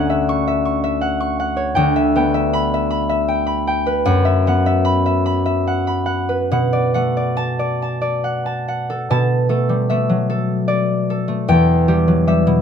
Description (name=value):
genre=classical, solo harp piece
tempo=46-54 BPM (dotted quarters)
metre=6/8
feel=rubato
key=B minor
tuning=A4 = 439 Hz
part: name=concert harp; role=solo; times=0.0-12.6 s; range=D2 to C#6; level=-15 LUFS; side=left 1 dB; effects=none
room=light reverb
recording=none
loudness=-15 LUFS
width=side -7 dB against mid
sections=0.0-9.1 A section; 9.1-12.6 B section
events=none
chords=0.0 Dmaj9; 1.8 Em7/D; 4.1 F#7sus4; 6.5 Bm7; 11.5 Em